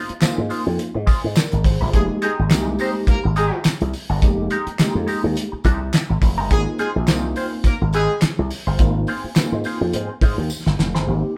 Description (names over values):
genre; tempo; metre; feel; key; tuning
funk; 105 BPM; 4/4; swing 56% on 16ths; unclear; A4 = 440 Hz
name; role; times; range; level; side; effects
clean electric guitar; accompaniment; 0.0-11.1 s; Ab3 to C5; -30 LUFS; equal; wah
slap bass with an envelope filter; bass; 0.1-11.2 s; F1 to Ab2; -24 LUFS; equal; none
cloth-damped thuddy drum kit; drums; 0.1-11.1 s; handclaps, hi-hat, kick drum, snare drum; -21 LUFS; equal; none
tine electric piano; stabs; 0.2-11.4 s; Ab3 to D5; -28 LUFS; equal; overdrive
tambourine; percussion; 0.2-10.9 s; none; -40 LUFS; equal; none
warm horn section; second line; 1.9-8.2 s; Ab3 to C5; -27 LUFS; equal; none
room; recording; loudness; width
moderate studio reverb, RT60 0.8 s; band playing live in one room; -20 LUFS; mono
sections
0.0-11.1 A section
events
drum fill 10.5-11.1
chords
0.0 Ab6; 1.9 Fm11; 6.5 Ab6